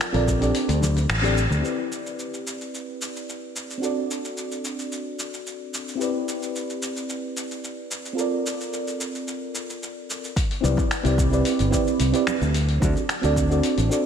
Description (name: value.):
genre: sunset chillout.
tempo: 110 BPM.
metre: 4/4.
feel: straight.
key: C lydian.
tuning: A4 = 440 Hz.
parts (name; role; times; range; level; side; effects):
dusty soul sampler-style drum kit; drums; 0.0-14.0 s; finger snaps, hi-hat, shaker; -30 LUFS; left 1 dB; none.
mellow FM electric piano; accompaniment; 0.1-14.1 s; C4 to D5; -26 LUFS; moving between left 7 dB and right 5 dB; chorus, auto-pan, ping-pong delay.
fingered electric bass; bass; 0.1-1.6, 10.6-13.9 s; G1 to D2; -22 LUFS; equal; none.
congas and bongos; percussion; 0.1-1.6, 10.6-13.9 s; none; -34 LUFS; left 3 dB; none.
electronic kick drum; drums; 0.3-0.4, 10.4-13.5 s; none; -25 LUFS; equal; none.
room: wet lush hall reverb, RT60 2.3 s.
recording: big arena sound.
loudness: -22 LUFS.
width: side -8 dB against mid.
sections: 0.0-1.6 A section; 1.6-10.4 B section; 10.4-14.1 C section.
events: band accent 1.1.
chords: 0.0 Bbmaj9; 0.5 D7sus4; 1.6 Cmaj9; 3.8 D7; 6.0 Cmaj9; 8.2 Bbmaj9; 10.4 Cmaj9; 12.5 D7.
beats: 0.00 0.54 1.09 | 1.64 2.18 2.73 3.27 | 3.82 4.36 4.91 5.45 | 6.00 6.54 7.09 7.63 | 8.18 8.73 9.27 9.82 | 10.36 10.91 11.45 12.00 | 12.54 13.09 13.63.